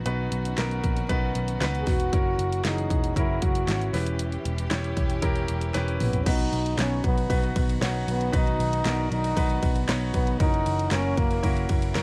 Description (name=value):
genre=piano-driven pop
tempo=116 BPM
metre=4/4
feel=straight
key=B major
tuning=A4 = 442 Hz
part: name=clear concert grand piano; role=accompaniment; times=0.0-12.0 s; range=B2 to C#5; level=-33 LUFS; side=equal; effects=plate reverb
part: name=warm studio string section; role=sustained chords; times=0.0-12.0 s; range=D#3 to G4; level=-41 LUFS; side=equal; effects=none
part: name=vintage muted picked electric bass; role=bass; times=0.1-12.0 s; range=E1 to C#2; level=-30 LUFS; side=equal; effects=none
part: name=pop drum kit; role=drums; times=0.1-12.0 s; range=crash cymbal, handclaps, hi-hat, kick drum, ride cymbal, snare drum, toms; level=-29 LUFS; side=equal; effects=none
part: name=breathy trombone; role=melody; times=1.8-11.7 s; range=A#3 to G#4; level=-32 LUFS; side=equal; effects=none
room=light reverb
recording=none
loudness=-25 LUFS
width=mono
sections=0.0-6.3 A section; 6.3-12.0 B section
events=drum fill 5.7-6.3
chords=0.0 B; 2.1 F#7; 3.9 Em6; 6.3 B; 10.4 F#7